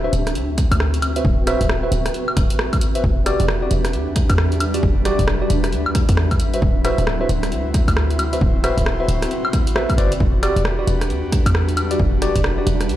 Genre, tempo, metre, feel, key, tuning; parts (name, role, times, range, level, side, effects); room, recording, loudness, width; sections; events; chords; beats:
UK garage, two-step garage; 134 BPM; 4/4; swing 62% on 16ths; E minor; A4 = 440 Hz
bright tine electric piano; stabs; 0.0-12.7 s; F#4 to E5; -24 LUFS; equal; medium stereo tremolo, tape echo
short 808-style bass; bass; 0.0-13.0 s; D1 to E2; -20 LUFS; equal
granular cloud pad; texture; 0.0-13.0 s; G3 to B5; -26 LUFS; equal; built-in reverb, sidechain pumping
punchy analog drum machine; drums; 0.1-13.0 s; hi-hat, rim click, woodblock; -24 LUFS; equal
electronic kick drum; drums; 0.6-12.4 s; -19 LUFS; equal
airy breathy pad; sustained chords; 3.2-13.0 s; C4 to C5; -29 LUFS; equal; chorus, sidechain pumping
light reverb; played on a big sound system in a bare room, stone room reverb; -16 LUFS; side -13 dB against mid
0.0-13.0 A section
0.0 D13; 3.0 Em7; 6.4 D13; 10.2 Em7
0.35 0.80 | 1.25 1.70 2.14 2.59 | 3.04 3.49 3.94 4.38 | 4.83 5.28 5.73 6.17 | 6.62 7.07 7.52 7.96 | 8.41 8.86 9.31 9.76 | 10.20 10.65 11.10 11.55 | 11.99 12.44 12.89